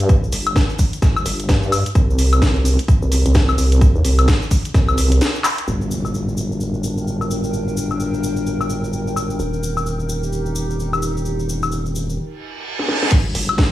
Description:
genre	bass house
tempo	129 BPM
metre	4/4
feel	swing 60% on 16ths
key	G minor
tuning	A4 = 440 Hz
part	vowel-sweep wobble bass	bass	0.0-13.7 s	Eb1 to G2	-19 LUFS	equal	chorus, sidechain pumping
part	house drum kit	drums	0.0-13.7 s	crash cymbal, handclaps, hi-hat, snare drum, woodblock	-21 LUFS	left 2 dB	overdrive, low-pass filter on perc, low-pass filter on hats, low-pass filter on snare, low-pass filter on cymbals, low-pass filter on room
part	cabasa	percussion	0.0-12.2 s	none	-33 LUFS	left 3 dB	none
part	electronic kick drum	drums	0.1-4.9, 13.1-13.7 s	none	-15 LUFS	equal	overdrive
part	impact and reverse cymbal	sound effects	5.7-7.5, 12.4-13.1 s	none	-26 LUFS	right 2 dB	none
part	warbly tape-like pad	texture	6.6-13.7 s	D4 to G5	-27 LUFS	equal	chorus, built-in reverb, phaser, sidechain pumping
room	little or no reverb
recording	small room reverb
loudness	-16 LUFS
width	side -15 dB against mid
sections	0.0-5.7 A section; 5.7-13.1 B section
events	break 5.2-5.7; drum fill 5.4, 12.8-13.1; impact 5.7-7.5; reverse cymbal 12.4-13.1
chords	0.0 N.C.; 5.7 Gm; 9.4 Eb; 13.1 G5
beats	| 0.09 0.56 1.02 1.49 | 1.95 2.42 2.88 3.35 | 3.81 4.28 4.75 5.21 | 5.67 6.14 6.61 7.07 | 7.54 8.00 8.47 8.93 | 9.40 9.86 10.33 10.79 | 11.26 11.72 12.19 12.65 | 13.12 13.58

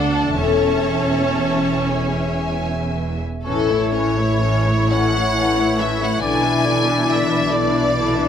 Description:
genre	classical, slow romantic movement for symphony orchestra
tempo	38-47 BPM (dotted quarters)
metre	6/8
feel	rubato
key	A major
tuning	A4 = 439 Hz
part	rich studio violin section	melody	0.0-8.3 s	A4 to G#5	-24 LUFS	left 2 dB	none
part	rich studio violin section	second line	0.0-8.3 s	C#4 to A5	-27 LUFS	left 1 dB	none
part	rich studio viola section	accompaniment	0.0-8.3 s	D3 to E4	-23 LUFS	right 1 dB	none
part	concert harp	arpeggios	0.0-8.3 s	A2 to D5	-26 LUFS	left 9 dB	none
part	clear studio cello section	bass	0.0-8.3 s	D2 to B2	-25 LUFS	right 2 dB	none
part	rich studio double bass section	bass	0.0-8.3 s	E1 to D2	-26 LUFS	right 3 dB	none
part	clear oboe	second line	3.4-8.3 s	C#5 to D5	-24 LUFS	right 1 dB	none
part	warm clarinet	second line	3.5-8.3 s	E4	-26 LUFS	left 4 dB	none
part	mellow French horn section	sustained chords	3.5-8.3 s	E3 to E4	-25 LUFS	left 5 dB	none
room	light reverb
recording	close, detailed microphones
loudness	-16 LUFS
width	side -8 dB against mid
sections	0.0-3.5 A section; 3.5-8.3 B section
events	none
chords	0.4 A/E; 1.9 E; 3.5 A; 6.2 E7/B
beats	| 0.39 1.94 | 3.46 4.92 | 6.23 7.52

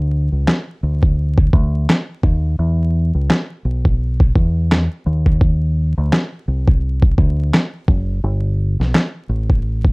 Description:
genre	lo-fi hip hop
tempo	85 BPM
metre	4/4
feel	swing 58% on 16ths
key	unclear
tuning	A4 = 439 Hz
part	deep dub fingered electric bass	bass	0.0-9.9 s	F#1 to E2	-17 LUFS	equal	none
part	dusty soul sampler-style drum kit	drums	0.5-9.9 s	handclaps, kick drum, snare drum	-14 LUFS	equal	overdrive
room	light reverb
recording	dark, warm production, vinyl crackle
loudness	-15 LUFS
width	side -36 dB against mid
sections	0.0-9.9 A section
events	break 0.0-9.9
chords	none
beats	0.47 1.18 1.88 | 2.59 3.29 4.00 4.71 | 5.41 6.12 6.82 7.53 | 8.23 8.94 9.65

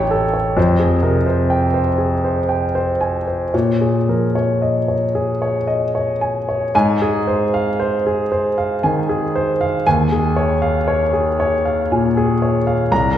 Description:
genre	classical, impressionist solo piano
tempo	55-65 BPM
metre	3/4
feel	rubato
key	Ab major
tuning	A4 = 441 Hz
part	warm concert grand piano	solo	0.0-13.2 s	A1 to Bb5	-15 LUFS	equal	none
room	wet recital hall reverb, RT60 1.6 s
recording	heard from further back in the room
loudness	-15 LUFS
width	side -10 dB against mid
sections	0.0-6.7 A section; 6.7-13.2 B section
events	none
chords	0.0 A7; 0.6 Fmadd9; 3.5 Bbm7; 6.7 Ab6; 9.9 Eb11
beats	| 0.57 1.50 2.49 | 3.53 4.61 5.67 | 6.74 7.79 8.83 | 9.85 10.87 11.91 | 12.91

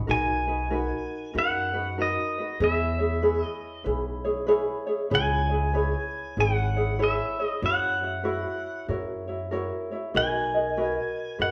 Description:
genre	Hawaiian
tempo	96 BPM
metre	4/4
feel	swing 63% on 8ths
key	B major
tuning	A4 = 440 Hz
part	ukulele	accompaniment	0.0-11.5 s	D#4 to D#5	-30 LUFS	equal	none
part	upright bass	bass	0.0-11.5 s	G#1 to F#2	-32 LUFS	equal	none
part	pedal steel guitar	melody	0.1-11.5 s	D#5 to G#5	-30 LUFS	equal	none
room	wet large studio reverb, RT60 1.2 s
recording	band playing live in one room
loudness	-27 LUFS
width	mono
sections	0.1-11.5 A section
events	none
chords	0.1 Bmaj7; 2.6 E6; 5.1 C#m7; 7.6 F#7sus4; 8.9 F#7; 10.1 Bmaj7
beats	| 0.09 0.72 1.34 1.97 | 2.60 3.23 3.86 4.49 | 5.12 5.74 6.37 7.00 | 7.63 8.26 8.89 9.52 | 10.14 10.77 11.40

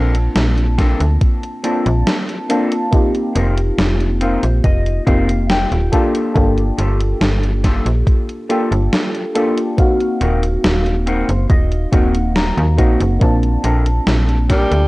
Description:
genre	vaporwave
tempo	70 BPM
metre	4/4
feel	straight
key	Bb major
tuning	A4 = 440 Hz
part	mellow FM electric piano	accompaniment	0.0-14.9 s	Bb3 to A5	-20 LUFS	equal	lush chorus, cassette tape, analog delay
part	clean electric guitar	riff	0.0-14.7 s	Bb3 to Bb5	-24 LUFS	left 2 dB	lush chorus, analog delay
part	slap-like FM bass	bass	0.0-14.9 s	Eb1 to Eb2	-16 LUFS	equal	none
part	gated 80s digital drum machine	drums	0.1-14.9 s	hi-hat, snare drum	-20 LUFS	equal	gated reverb, gated reverb snare, studio reverb
part	electronic kick drum	drums	0.8-14.7 s	none	-15 LUFS	equal	studio reverb
part	breathy tenor saxophone	melody	14.5-14.9 s	G3	-17 LUFS	equal	none
room	little or no reverb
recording	dry, gritty hardware recording, cassette tape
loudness	-13 LUFS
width	side -20 dB against mid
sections	0.0-14.9 A section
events	clean electric guitar fill 3.8-6.4, 10.6-13.2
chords	0.0 Bbmaj9; 2.9 F7sus4; 5.9 Gm9; 9.8 Ebm6; 13.2 Bbmaj9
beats	0.35 1.21 2.07 | 2.93 3.78 4.64 5.50 | 6.36 7.21 8.07 8.93 | 9.78 10.64 11.50 12.36 | 13.21 14.07

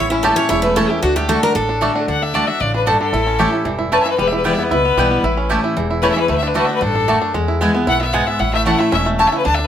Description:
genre	bluegrass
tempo	228 BPM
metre	4/4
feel	straight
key	D major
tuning	A4 = 442 Hz
part	picked steel-string acoustic guitar	melody	0.0-2.0 s	E4 to C#5	-19 LUFS	equal	none
part	clear fiddle	second line	0.0-9.7 s	E4 to A5	-19 LUFS	left 4 dB	none
part	picked steel-string acoustic guitar	accompaniment	0.0-9.7 s	E2 to F#4	-22 LUFS	left 2 dB	none
part	bluegrass banjo	arpeggios	0.0-9.7 s	D3 to G4	-21 LUFS	right 4 dB	none
part	upright bass	bass	0.0-9.7 s	E1 to E2	-23 LUFS	equal	none
part	mandolin	stabs	0.2-9.3 s	A3 to A5	-20 LUFS	right 2 dB	none
room	moderate studio reverb, RT60 0.7 s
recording	none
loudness	-14 LUFS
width	side -9 dB against mid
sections	0.0-2.1 A section; 2.1-9.7 B section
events	fiddle solo 2.1-9.7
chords	0.0 A; 1.0 D; 3.1 A; 4.2 Em; 5.2 A; 6.3 D; 7.3 E; 8.4 A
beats	0.24 0.51 0.77 | 1.03 1.29 1.56 1.82 | 2.08 2.35 2.61 2.87 | 3.13 3.40 3.66 3.92 | 4.19 4.45 4.71 4.98 | 5.24 5.50 5.77 6.03 | 6.29 6.56 6.82 7.08 | 7.35 7.61 7.88 8.14 | 8.40 8.66 8.93 9.19 | 9.46

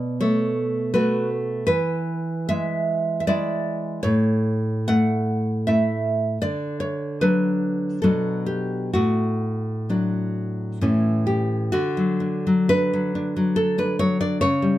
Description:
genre	romantic piece for solo classical guitar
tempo	59-84 BPM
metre	3/4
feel	rubato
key	D major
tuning	A4 = 440 Hz
part	nylon-string guitar	solo	0.0-14.8 s	A2 to F#5	-20 LUFS	equal	none
room	moderate studio reverb, RT60 0.8 s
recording	none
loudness	-20 LUFS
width	side -14 dB against mid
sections	0.0-11.7 A section; 11.7-14.8 B section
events	none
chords	0.0 B7(no3); 1.7 E7; 4.0 A; 6.4 D; 8.0 Bm; 8.9 D/A; 10.8 A; 11.7 D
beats	0.22 0.96 | 1.68 2.50 3.27 | 4.04 4.88 5.67 | 6.41 7.19 8.02 | 8.93 9.88 10.82 | 11.74 12.71 13.59 | 14.44

